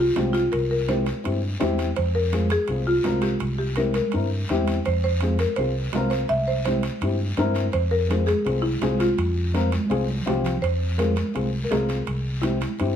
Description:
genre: latin, cumbia.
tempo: 166 BPM.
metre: 4/4.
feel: straight.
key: F harmonic minor.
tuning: A4 = 440 Hz.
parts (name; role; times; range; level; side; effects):
buzzing marimba with medium mallets; melody; 0.0-13.0 s; E4 to E5; -25 LUFS; equal; none.
fingered electric bass; bass; 0.0-13.0 s; C2 to G2; -25 LUFS; equal; none.
dark upright piano; accompaniment; 0.2-12.9 s; C4 to Bb4; -27 LUFS; left 4 dB; none.
congas; percussion; 0.2-12.6 s; none; -30 LUFS; right 4 dB; none.
guiro; percussion; 0.2-13.0 s; none; -39 LUFS; left 4 dB; none.
timbales; percussion; 0.2-13.0 s; none; -34 LUFS; right 7 dB; none.
room: moderate studio reverb, RT60 0.6 s.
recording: heard from further back in the room, lossy compression artefacts.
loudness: -21 LUFS.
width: side -9 dB against mid.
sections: 0.0-10.6 A section; 10.6-13.0 A section.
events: drum fill 9.7-10.6.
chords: 0.0 F5; 0.5 C; 2.0 Fm; 3.4 C7; 4.9 Fm; 6.3 C7; 7.7 Fm; 12.1 C.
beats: 0.17 | 0.53 0.89 1.25 1.61 | 1.97 2.33 2.69 3.05 | 3.41 3.77 4.13 4.49 | 4.86 5.22 5.58 5.94 | 6.30 6.66 7.02 7.38 | 7.74 8.10 8.46 8.82 | 9.18 9.54 9.90 10.27 | 10.63 10.99 11.35 11.71 | 12.07 12.43 12.79.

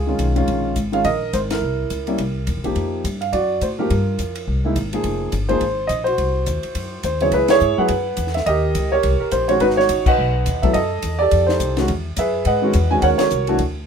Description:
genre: jazz piano trio.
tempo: 210 BPM.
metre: 4/4.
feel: swing 59% on 8ths.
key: F minor, C# minor from 7.3 s.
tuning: A4 = 440 Hz.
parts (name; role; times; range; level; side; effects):
warm grand piano; melody; 0.0-13.6 s; Db3 to G#5; -18 LUFS; right 1 dB; none.
upright bass; bass; 0.0-13.9 s; F1 to A2; -22 LUFS; left 1 dB; none.
compact cocktail drum kit; drums; 0.2-13.7 s; crash cymbal, hi-hat, kick drum, ride cymbal, snare drum; -27 LUFS; left 2 dB; none.
room: light reverb.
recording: minimal, uncompressed stereo recording.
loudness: -17 LUFS.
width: side -6 dB against mid.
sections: 0.0-7.3 A section; 7.3-13.9 B section.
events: band accent 1.5, 7.5, 10.0, 13.2.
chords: 0.5 Absus2; 1.6 C7b9; 2.8 Fsus2; 3.3 D; 3.9 Fsus24; 4.5 Cm7b13; 5.0 Fm9; 6.2 Ab7 (rootless); 7.3 C#m7; 8.5 D#7; 9.6 G#m7; 10.7 F#m7; 11.3 F9; 11.9 Emaj9; 13.0 D#m7.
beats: 0.20 | 0.48 0.77 1.05 1.34 | 1.62 1.91 2.19 2.48 | 2.76 3.05 3.33 3.62 | 3.90 4.19 4.47 4.76 | 5.04 5.33 5.62 5.90 | 6.19 6.47 6.76 7.04 | 7.33 7.61 7.90 8.18 | 8.47 8.75 9.04 9.32 | 9.61 9.89 10.18 10.46 | 10.75 11.03 11.32 11.60 | 11.89 12.17 12.46 12.74 | 13.03 13.31 13.60.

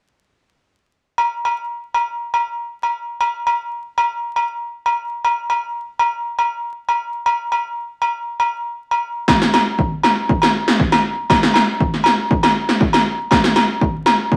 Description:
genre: highlife.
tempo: 119 BPM.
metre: 4/4.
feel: straight.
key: none.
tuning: none.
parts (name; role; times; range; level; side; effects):
agogo bells; percussion; 1.2-14.2 s; none; -20 LUFS; equal; none.
80s electronic pad drums; drums; 9.3-14.4 s; kick drum, snare drum; -18 LUFS; equal; none.
room: wet studio reverb, RT60 0.7 s.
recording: vinyl crackle.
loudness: -18 LUFS.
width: mono.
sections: 1.2-9.3 A section; 9.3-14.4 B section.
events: none.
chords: none.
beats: | 1.19 1.70 2.20 2.71 | 3.22 3.72 4.23 4.74 | 5.24 5.75 6.26 6.76 | 7.27 7.77 8.28 8.78 | 9.29 9.79 10.30 10.80 | 11.30 11.81 12.31 12.81 | 13.31 13.81 14.32.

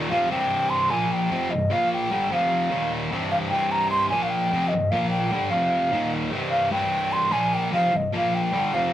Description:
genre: rock.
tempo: 150 BPM.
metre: 4/4.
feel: straight.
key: C minor.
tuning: A4 = 440 Hz.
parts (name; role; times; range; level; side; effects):
sludgy distorted guitar; riff; 0.0-8.9 s; C2 to Bb3; -24 LUFS; equal; overdrive.
mellow hollow silver concert flute; melody; 0.1-8.9 s; Eb5 to C6; -23 LUFS; equal; none.
room: wet small room reverb, RT60 0.6 s.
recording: rough rehearsal-room recording.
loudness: -21 LUFS.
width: side -12 dB against mid.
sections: 0.3-8.9 A section.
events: none.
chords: 0.3 C5; 0.9 Bb5; 1.3 Cm; 1.7 Bb5; 2.1 G5; 2.3 F5; 2.7 Eb5; 3.1 C5; 4.1 Bb5; 4.5 Cm; 4.9 Bb5; 5.3 G5; 5.5 F5; 5.9 Eb5; 6.3 C5; 7.3 Bb5; 7.7 Cm; 8.1 Bb5; 8.5 G5.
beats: | 0.31 0.71 1.11 1.51 | 1.91 2.31 2.71 3.11 | 3.51 3.91 4.31 4.71 | 5.12 5.52 5.92 6.32 | 6.72 7.12 7.53 7.93 | 8.33 8.73.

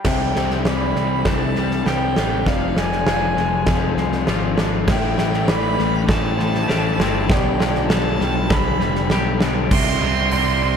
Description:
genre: post-rock.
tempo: 99 BPM.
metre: 4/4.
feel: straight.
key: C major.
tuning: A4 = 441 Hz.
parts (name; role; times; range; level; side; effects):
electric guitar through a small old amp; arpeggios; 0.0-10.8 s; G4 to E5; -32 LUFS; right 8 dB; wide subtle chorus, analog delay.
twangy electric guitar; arpeggios; 0.0-9.7 s; F2 to G4; -30 LUFS; left 1 dB; analog delay.
overdriven semi-hollow guitar; riff; 0.0-9.7 s; F2 to C4; -24 LUFS; left 11 dB; spring reverb.
huge arena drum kit; drums; 0.0-10.5 s; crash cymbal, hi-hat, kick drum, snare drum; -21 LUFS; right 1 dB; none.
clear violin; melody; 0.1-10.8 s; F5 to C6; -25 LUFS; right 1 dB; analog delay.
phased analog pad; sustained chords; 1.3-10.8 s; C3 to C5; -33 LUFS; right 1 dB; none.
modern bright picked electric bass; bass; 0.1-10.8 s; F1 to C2; -24 LUFS; right 1 dB; none.
distorted electric guitar; riff; 9.7-10.8 s; C3 to C4; -22 LUFS; right 14 dB; distortion.
room: light reverb, small room ambience.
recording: none.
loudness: -16 LUFS.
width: side -7 dB against mid.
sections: 0.1-9.7 A section; 9.7-10.8 B section.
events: build-up 0.1-9.7.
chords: 0.1 Cmaj7; 2.5 Fm6; 4.9 Am7; 7.3 G7/B; 9.7 C.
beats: | 0.06 0.66 1.26 1.87 | 2.47 3.08 3.68 4.28 | 4.89 5.49 6.09 6.70 | 7.30 7.90 8.51 9.11 | 9.71 10.32.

